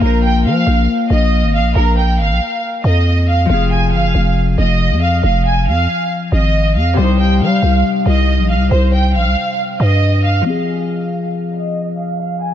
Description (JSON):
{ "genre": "hip hop, drill", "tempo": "138 BPM", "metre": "4/4", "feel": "half-time", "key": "F minor", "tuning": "A4 = 439 Hz", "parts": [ { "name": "clear studio violin section", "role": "melody", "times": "0.0-12.5 s", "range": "Bb4 to Ab5", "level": "-18 LUFS", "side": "right 2 dB", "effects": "low-pass filter, diffuse ambient delay" }, { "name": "Celtic harp", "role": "accompaniment", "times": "0.0-12.5 s", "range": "C3 to C5", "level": "-19 LUFS", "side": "left 5 dB", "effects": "low-pass filter" }, { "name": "growling 808-style bass", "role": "bass", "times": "0.0-10.4 s", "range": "F1 to G3", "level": "-13 LUFS", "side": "equal", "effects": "none" } ], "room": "light reverb, studio reverb", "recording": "nothing above 7.8 kHz", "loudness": "-12 LUFS", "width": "side -10 dB against mid", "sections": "0.0-10.4 A section; 10.4-12.5 B section", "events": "filter sweep 10.4-12.5", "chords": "0.0 Bbsus2; 3.5 Fm; 7.0 Cm; 10.4 Fm" }